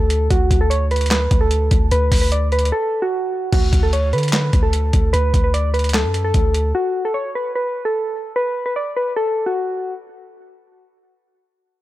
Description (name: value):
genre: hip hop, trap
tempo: 149 BPM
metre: 4/4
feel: half-time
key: D major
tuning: A4 = 440 Hz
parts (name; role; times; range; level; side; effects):
- soft electric-piano-like synth keys; melody; 0.0-9.9 s; F#4 to D5; -20 LUFS; equal; chorus, low-pass filter, tape echo
- long sustained 808-style bass; bass; 0.0-6.7 s; D2 to D3; -18 LUFS; equal; none
- boom bap sampler-style drum kit; drums; 0.1-6.6 s; crash cymbal, handclaps, hi-hat, kick drum, snare drum; -18 LUFS; equal; overdrive
room: little or no reverb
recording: none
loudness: -16 LUFS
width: side -15 dB against mid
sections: 0.0-3.5 A section; 3.5-10.0 B section; 10.0-11.8 C section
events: break 2.7-3.5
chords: 0.0 D; 3.5 D5; 6.7 N.C.